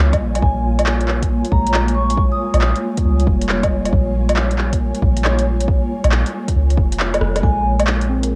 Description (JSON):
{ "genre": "future garage", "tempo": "137 BPM", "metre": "4/4", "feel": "swing 66% on 16ths", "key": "Bb dorian", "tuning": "A4 = 440 Hz", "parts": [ { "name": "muted felt-like synth keys", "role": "accompaniment", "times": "0.0-8.4 s", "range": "G3 to C4", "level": "-29 LUFS", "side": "equal", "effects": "chorus, vintage 12-bit sampler grit, sidechain pumping, cassette tape, analog delay" }, { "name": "ethereal airy pad", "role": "sustained chords", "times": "0.0-8.4 s", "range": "Bb3 to Ab5", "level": "-26 LUFS", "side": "equal", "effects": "ensemble chorus, built-in reverb, sidechain pumping, cassette tape" }, { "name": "soft 808-style bass", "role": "bass", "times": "0.0-8.4 s", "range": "F1 to Db2", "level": "-20 LUFS", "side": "equal", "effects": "sidechain pumping" }, { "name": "deep house drum kit", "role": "drums", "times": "0.1-8.3 s", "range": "handclaps, hi-hat, rim click, woodblock", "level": "-24 LUFS", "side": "equal", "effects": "overdrive, cassette tape" }, { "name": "electronic kick drum", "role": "drums", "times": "0.1-7.5 s", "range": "none", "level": "-21 LUFS", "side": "equal", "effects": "overdrive, cassette tape" }, { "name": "vibraphone with medium mallets", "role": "melody", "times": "0.4-2.8, 7.4-7.7 s", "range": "Ab5 to Eb6", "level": "-26 LUFS", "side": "equal", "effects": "vintage 12-bit sampler grit, cassette tape, analog delay" } ], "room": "light reverb", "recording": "home recording on cassette", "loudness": "-17 LUFS", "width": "mono", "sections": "0.0-7.4 A section", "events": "break 7.0-7.4; drum fill 7.1-7.4; band accent 7.3", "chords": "0.0 Bbm7; 7.4 Bb7(no3)" }